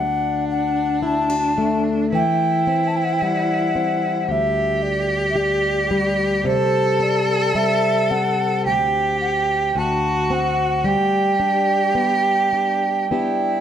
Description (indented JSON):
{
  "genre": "celtic folk, Celtic slow air",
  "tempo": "55 BPM",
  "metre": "4/4",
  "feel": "rubato",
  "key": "G major",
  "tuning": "A4 = 441 Hz",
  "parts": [
    { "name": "mellow hollow alto ocarina", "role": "melody", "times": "0.0-13.6 s", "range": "C5 to A5", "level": "-21 LUFS", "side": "right 2 dB", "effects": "none" },
    { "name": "bright cello", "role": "second line", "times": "0.0-13.6 s", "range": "D4 to A4", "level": "-22 LUFS", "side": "equal", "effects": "none" },
    { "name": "fingerpicked plugged-in swing-style acoustic guitar", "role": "accompaniment", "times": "0.0-13.6 s", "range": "D2 to G4", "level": "-22 LUFS", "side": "left 3 dB", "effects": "none" }
  ],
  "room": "light reverb",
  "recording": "close, detailed microphones",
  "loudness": "-17 LUFS",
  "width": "side -9 dB against mid",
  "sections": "0.0-13.6 A section",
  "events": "none",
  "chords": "0.0 D; 2.1 C; 4.3 G5/D; 6.5 C5; 8.7 N.C.; 9.8 D7; 10.8 G"
}